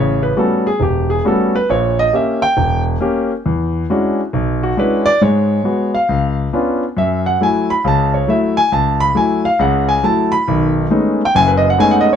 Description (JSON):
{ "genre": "solo jazz", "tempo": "137 BPM", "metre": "4/4", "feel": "swing 66% on 8ths", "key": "unclear", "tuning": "A4 = 440 Hz", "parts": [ { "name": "warm concert grand piano", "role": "solo", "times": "0.0-12.2 s", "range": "E1 to B5", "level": "-13 LUFS", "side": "equal", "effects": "none" } ], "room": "light reverb", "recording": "close, detailed microphones", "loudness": "-13 LUFS", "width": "side -8 dB against mid", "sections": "0.0-12.2 A section", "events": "grand piano solo 0.0-12.2", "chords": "0.0 A13; 1.7 A#dim7; 3.4 E13; 5.2 G#madd11; 6.1 C#7b9; 7.0 F#m7; 10.5 B13" }